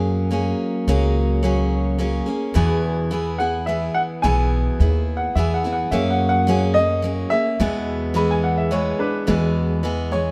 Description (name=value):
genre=honky-tonk and classic country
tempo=107 BPM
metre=3/4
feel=straight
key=E lydian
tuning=A4 = 440 Hz
part: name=picked steel-string acoustic guitar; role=accompaniment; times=0.0-10.3 s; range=E2 to G#4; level=-24 LUFS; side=equal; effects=none
part: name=upright bass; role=bass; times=0.0-10.3 s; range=B1 to F#2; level=-24 LUFS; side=equal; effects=none
part: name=warm upright piano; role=melody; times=3.4-10.3 s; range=C#5 to G#5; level=-24 LUFS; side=equal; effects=none
part: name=bright upright piano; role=second line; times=5.2-9.3 s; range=D4 to B5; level=-26 LUFS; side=equal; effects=none
room=light reverb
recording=none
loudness=-21 LUFS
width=mono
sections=0.0-9.3 A section; 9.3-10.3 A section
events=none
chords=0.0 F#add9; 2.6 E; 5.9 F#add9; 7.6 E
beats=0.31 | 0.88 1.44 2.00 | 2.56 3.12 3.68 | 4.24 4.80 5.36 | 5.92 6.47 7.04 | 7.59 8.15 8.71 | 9.27 9.83